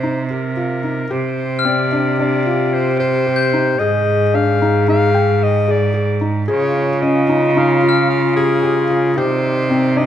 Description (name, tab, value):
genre	contemporary instrumental, chamber music in an uneven meter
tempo	112 BPM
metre	5/4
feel	straight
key	unclear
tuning	A4 = 440 Hz
part	clear clarinet	melody	0.0-10.1 s	Ab4 to F5	-21 LUFS	left 1 dB	none
part	felt-muted upright piano	arpeggios	0.0-10.1 s	C4 to G5	-21 LUFS	left 2 dB	none
part	clear cello	bass	0.0-10.1 s	Ab2 to Db3	-19 LUFS	right 4 dB	none
part	dark French horn	second line	1.1-10.1 s	Eb4 to Ab4	-19 LUFS	left 4 dB	none
part	glockenspiel with brass mallets	texture	1.6-9.4 s	F6 to G6	-24 LUFS	left 5 dB	none
part	hand-pumped harmonium	sustained chords	6.5-10.1 s	C3 to D5	-26 LUFS	right 1 dB	none
room	light reverb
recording	none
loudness	-14 LUFS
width	side -10 dB against mid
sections	0.0-1.1 A section; 1.1-10.1 B section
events	none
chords	0.0 Csus2; 3.8 Ab5; 6.5 Db; 9.2 Cmadd9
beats	0.04 0.58 | 1.11 1.65 2.19 2.73 3.27 | 3.80 4.34 4.88 5.41 5.95 | 6.49 7.02 7.56 8.10 8.63 | 9.17 9.71